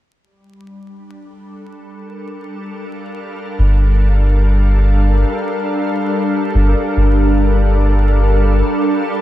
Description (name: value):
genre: ambient dub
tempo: 71 BPM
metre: 4/4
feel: straight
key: G minor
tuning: A4 = 439 Hz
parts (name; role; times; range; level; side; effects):
- soft additive organ-like pad; sustained chords; 0.7-9.2 s; G3 to F5; -19 LUFS; equal; ensemble chorus, built-in reverb
- soft dub sub bass; bass; 3.6-8.6 s; G1; -12 LUFS; equal; none
room: light reverb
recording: dark, warm production, vinyl crackle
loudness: -12 LUFS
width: side -14 dB against mid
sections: 0.2-7.0 A section; 7.0-9.2 B section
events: fade-in on ambient pad 0.2-7.0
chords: 0.2 Gm7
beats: | 0.21 1.05 1.90 2.75 | 3.59 4.43 5.28 6.12 | 6.97 7.82 8.66